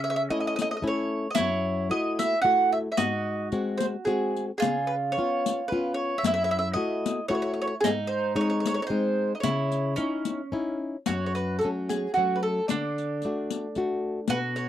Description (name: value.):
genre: italian folk, Italian serenade.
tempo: 112 BPM.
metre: 3/4.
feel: swing 54% on 8ths, rubato.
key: C# harmonic minor, F# minor from 11.1 s.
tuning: A4 = 441 Hz.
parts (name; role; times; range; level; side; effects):
mandolin; melody; 0.0-14.7 s; F#4 to F#5; -27 LUFS; right 2 dB; none.
mandolin; second line; 0.0-14.7 s; C#4 to F#4; -33 LUFS; right 4 dB; none.
flamenco guitar; accompaniment; 0.0-14.7 s; F#2 to F#4; -29 LUFS; left 2 dB; none.
riq; percussion; 0.6-14.7 s; none; -30 LUFS; left 8 dB; none.
room: light reverb.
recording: dry, close 1970s-style studio recording.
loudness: -24 LUFS.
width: side -11 dB against mid.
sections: 0.0-11.1 A section; 11.1-14.7 B section.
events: none.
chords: 0.0 A/C#; 1.4 F#m7; 3.0 G#7; 4.6 C#7; 6.2 F#m7; 7.8 G#; 9.4 C#madd9; 11.1 F#m; 12.7 D.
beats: 0.29 0.83 | 1.37 1.90 2.44 | 2.98 3.52 4.06 | 4.61 5.16 5.71 | 6.24 6.78 7.31 | 7.84 8.37 8.90 | 9.43 9.96 10.51 | 11.06 11.60 12.15 | 12.69 13.22 13.76 | 14.29.